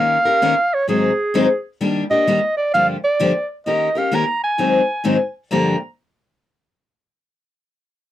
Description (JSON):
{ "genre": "jazz", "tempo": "130 BPM", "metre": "4/4", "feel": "swing 65% on 8ths", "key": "unclear", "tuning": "A4 = 440 Hz", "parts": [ { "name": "breathy clarinet", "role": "melody", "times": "0.0-5.8 s", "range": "Ab4 to Bb5", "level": "-18 LUFS", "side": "right 1 dB", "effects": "slapback echo" }, { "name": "picked steel-string acoustic guitar", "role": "accompaniment", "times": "0.0-5.8 s", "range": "G2 to Bb4", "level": "-18 LUFS", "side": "left 3 dB", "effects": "none" } ], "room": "light reverb", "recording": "dry, close 1970s-style studio recording", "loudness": "-16 LUFS", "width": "side -12 dB against mid", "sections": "0.0-5.5 A section; 5.5-7.4 B section", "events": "none", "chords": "0.0 Eb9; 0.9 Ab7; 1.8 Ebmaj7; 2.7 Gm7; 3.7 Eb7; 4.6 Ab7; 5.5 Gm7" }